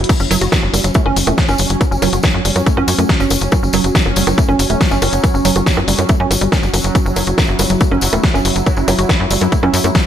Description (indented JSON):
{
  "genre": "psychedelic trance",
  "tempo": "140 BPM",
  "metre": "4/4",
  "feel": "straight",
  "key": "unclear",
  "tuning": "A4 = 439 Hz",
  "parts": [
    { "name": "bubbling stepped-filter texture", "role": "sustained chords", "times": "0.0-10.1 s", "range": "F#3 to E4", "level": "-21 LUFS", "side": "right 1 dB", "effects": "chorus, built-in reverb, sidechain pumping" },
    { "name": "tight sequencer bass", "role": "bass", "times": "0.0-9.9 s", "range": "E1 to F#2", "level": "-18 LUFS", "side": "equal", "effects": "none" },
    { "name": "big-room dance drum kit", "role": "drums", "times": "0.0-10.0 s", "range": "bongos, crash cymbal, hi-hat, snare drum", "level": "-19 LUFS", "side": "equal", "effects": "none" },
    { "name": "woody wave-folded pluck", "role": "riff", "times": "0.1-10.0 s", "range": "F#3 to F#4", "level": "-19 LUFS", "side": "moving between left 3 dB and right 5 dB", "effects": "chorus, auto-pan, sidechain pumping, digital delay" },
    { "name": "electronic kick drum", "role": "drums", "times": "0.1-10.0 s", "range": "none", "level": "-14 LUFS", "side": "equal", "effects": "none" },
    { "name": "tambourine", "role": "percussion", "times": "0.1-10.0 s", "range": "none", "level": "-26 LUFS", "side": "left 3 dB", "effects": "none" }
  ],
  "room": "light reverb, digital ambience",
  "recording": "none",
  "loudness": "-12 LUFS",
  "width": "side -10 dB against mid",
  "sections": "0.0-10.1 A section",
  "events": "none",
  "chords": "0.0 F#5"
}